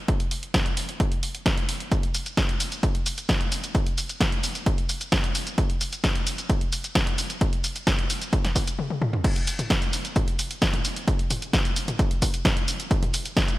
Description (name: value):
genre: techno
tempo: 131 BPM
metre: 4/4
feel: straight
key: none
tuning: none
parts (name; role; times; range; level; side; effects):
- electronic kick drum; drums; 0.1-13.5 s; none; -24 LUFS; equal; none
- punchy analog drum machine; drums; 0.1-13.6 s; crash cymbal, hi-hat, shaker, snare drum, toms; -27 LUFS; equal; none
room: light reverb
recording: none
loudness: -22 LUFS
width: side -17 dB against mid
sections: 0.0-9.2 A section; 9.2-13.6 B section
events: drum fill 8.8-9.2; drop 9.2-13.6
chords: none